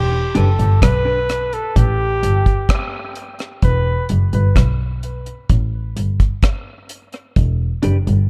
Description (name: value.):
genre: dub reggae.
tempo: 64 BPM.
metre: 4/4.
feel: straight.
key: E minor.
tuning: A4 = 440 Hz.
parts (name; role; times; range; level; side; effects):
warm flugelhorn; melody; 0.0-4.1 s; G4 to B4; -24 LUFS; equal; tape echo.
warm double bass; bass; 0.0-8.3 s; E1 to B1; -19 LUFS; equal; none.
clean electric guitar; accompaniment; 0.3-0.5, 7.8-8.0 s; D4 to B4; -27 LUFS; equal; subtle chorus, tape echo.
deep reggae drum kit; drums; 0.4-8.3 s; hi-hat, kick drum, rim click; -20 LUFS; equal; none.
room: light reverb, studio ambience.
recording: dark, warm production.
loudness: -17 LUFS.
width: mono.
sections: 0.0-8.3 A section.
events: break 0.0-7.4.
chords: 0.0 Em (rootless); 3.6 Em; 7.4 Em7.